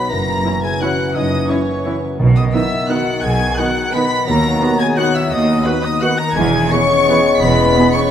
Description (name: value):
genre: classical, orchestral ballroom waltz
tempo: 172 BPM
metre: 3/4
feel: uneven beats, rubato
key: B major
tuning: A4 = 441 Hz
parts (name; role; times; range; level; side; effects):
- warm symphonic violin section; melody; 0.0-8.0 s; B5 to C#7; -24 LUFS; left 2 dB; none
- bright silver concert flute; second line; 0.0-8.1 s; B4 to C#6; -25 LUFS; left 2 dB; none
- dark symphonic violin section; second line; 0.0-8.1 s; B4 to C#6; -26 LUFS; left 3 dB; none
- warm clarinet; second line; 0.0-8.1 s; B3 to C#4; -26 LUFS; left 1 dB; none
- warm oboe; second line; 0.0-8.0 s; B4 to C#6; -25 LUFS; right 1 dB; none
- mellow bassoon; accompaniment; 0.0-8.1 s; D#3 to G#3; -23 LUFS; right 2 dB; none
- mellow French horn section; sustained chords; 0.0-8.1 s; B3 to C#5; -21 LUFS; left 5 dB; none
- concert harp; arpeggios; 0.0-8.1 s; F#2 to B4; -24 LUFS; left 6 dB; none
- warm symphonic cello section; bass; 0.1-7.7 s; D#2 to B2; -22 LUFS; right 3 dB; none
- warm symphonic double bass section; bass; 0.1-7.7 s; E1 to D#2; -22 LUFS; right 3 dB; none
- dark studio viola section; accompaniment; 0.5-7.9 s; B3 to G#4; -23 LUFS; right 2 dB; none
- clear trombone section; sustained chords; 0.5-7.9 s; D#3 to C#4; -27 LUFS; right 4 dB; none
- timpani; percussion; 2.2-2.7 s; B2; -23 LUFS; right 3 dB; none
room: wet scoring stage reverb, RT60 2.2 s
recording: none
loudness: -13 LUFS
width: side -9 dB against mid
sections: 0.0-8.1 A section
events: none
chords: 0.1 F#7; 2.2 B; 4.3 B/D#; 6.4 C#m7/E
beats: | 0.11 0.46 0.82 | 1.16 1.51 1.86 | 2.20 2.54 2.90 | 3.24 3.58 3.94 | 4.28 4.62 4.98 | 5.32 5.66 6.02 | 6.36 6.72 7.08 | 7.42 7.76